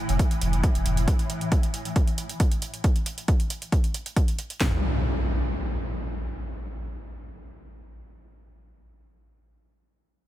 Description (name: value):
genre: driving peak-time techno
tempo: 136 BPM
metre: 4/4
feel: straight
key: unclear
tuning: A4 = 440 Hz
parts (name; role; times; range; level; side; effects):
- swarming drone; drone; 0.0-1.1 s; A2 to E3; -32 LUFS; equal; built-in reverb, ensemble chorus, sidechain pumping
- saturated sub bass; bass; 0.1-1.1 s; F1; -26 LUFS; equal; tube saturation, sidechain pumping, low-pass filter
- electronic hi-hat; drums; 0.1-4.6 s; none; -35 LUFS; right 3 dB; studio reverb
- techno drum kit; drums; 0.2-4.7 s; handclaps, kick drum, snare drum; -22 LUFS; equal; studio reverb
- impact; sound effects; 4.6-9.5 s; none; -28 LUFS; equal; none
room: small room ambience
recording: none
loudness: -23 LUFS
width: side -14 dB against mid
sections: 0.0-4.6 A section; 4.6-8.1 B section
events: none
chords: 0.0 Fmaj7; 4.6 N.C.